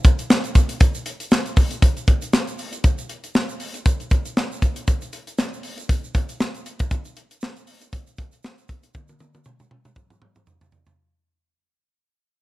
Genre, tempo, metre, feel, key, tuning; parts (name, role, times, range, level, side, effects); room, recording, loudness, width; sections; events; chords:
funk; 118 BPM; 4/4; swing 56% on 16ths
tight funk drum kit; drums; 0.0-11.0 s; handclaps, hi-hat, kick drum, snare drum, toms; -18 LUFS; equal
egg shaker; percussion; 0.0-11.0 s; -40 LUFS; right 6 dB
little or no reverb; -19 LUFS; side -18 dB against mid
0.0-11.0 A section
fade-out 0.0-11.0; drum fill 8.9-11.0